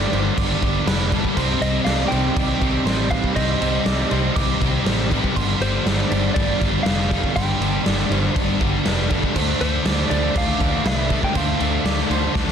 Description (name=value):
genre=rock, shoegaze and dream pop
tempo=120 BPM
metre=4/4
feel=straight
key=G mixolydian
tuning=A4 = 440 Hz
part: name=direct-recorded clean electric guitar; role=arpeggios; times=0.0-12.5 s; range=A4 to D6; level=-31 LUFS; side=right 13 dB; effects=lush chorus, analog delay
part: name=crunchy overdriven guitar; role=riff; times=0.0-12.5 s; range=G2 to Eb4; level=-29 LUFS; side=right 10 dB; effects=reverse reverb
part: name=distorted electric guitar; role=riff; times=0.0-12.5 s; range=G2 to D4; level=-26 LUFS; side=right 1 dB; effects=distortion
part: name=thick fuzz guitar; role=riff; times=0.0-12.5 s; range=G2 to D4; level=-26 LUFS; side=left 13 dB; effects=distortion, analog chorus
part: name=vintage muted fingered electric bass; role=bass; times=0.0-12.5 s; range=F1 to D2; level=-24 LUFS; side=equal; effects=none
part: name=raw garage drum kit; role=drums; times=0.1-12.5 s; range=crash cymbal, kick drum, snare drum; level=-22 LUFS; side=equal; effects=none
part: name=mellow electric guitar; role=melody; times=1.6-12.5 s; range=C5 to G5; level=-28 LUFS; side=equal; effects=warbly pitch drift, analog delay
room=studio ambience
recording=dense, heavily limited modern master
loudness=-18 LUFS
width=side -8 dB against mid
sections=0.0-12.5 A section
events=drum fill 12.4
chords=0.0 G7sus4; 1.4 Cm; 5.4 G7sus4; 9.4 Dm7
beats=0.37 0.87 | 1.36 1.86 2.36 2.86 | 3.36 3.86 4.36 4.86 | 5.36 5.86 6.36 6.86 | 7.36 7.86 8.36 8.86 | 9.36 9.86 10.36 10.86 | 11.36 11.86 12.36